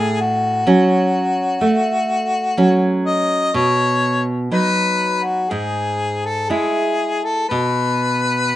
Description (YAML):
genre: romantic duo for harmonica and classical guitar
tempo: 61 BPM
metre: 4/4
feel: rubato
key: E major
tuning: A4 = 440 Hz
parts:
  - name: warm harmonica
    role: melody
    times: 0.0-8.6 s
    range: F#4 to D#5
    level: -18 LUFS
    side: left 2 dB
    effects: slapback echo
  - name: nylon-string guitar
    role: accompaniment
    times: 0.0-8.5 s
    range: G#2 to E4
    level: -18 LUFS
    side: right 2 dB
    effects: none
room: light reverb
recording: recorded outdoors, with no room sound, nothing above 10.3 kHz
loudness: -16 LUFS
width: side -14 dB against mid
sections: 0.0-8.6 A section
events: none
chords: 0.0 F#m/A; 3.5 B; 5.5 E/G#; 7.5 N.C.